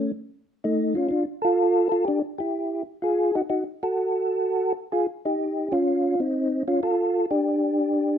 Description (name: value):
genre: jazz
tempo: 126 BPM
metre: 4/4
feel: swing 68% on 8ths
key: unclear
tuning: A4 = 443 Hz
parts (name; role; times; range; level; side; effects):
- percussive tonewheel organ; solo; 0.0-8.2 s; A3 to A4; -22 LUFS; equal; slow rotary speaker, chorus vibrato
room: moderate studio reverb, RT60 0.7 s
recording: none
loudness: -22 LUFS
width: side -9 dB against mid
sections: 0.0-8.2 A section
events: none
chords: 0.0 A; 1.1 Dmadd11; 3.0 Ebmadd9; 4.0 N.C.; 4.9 Dbmaj9; 6.8 Gsus2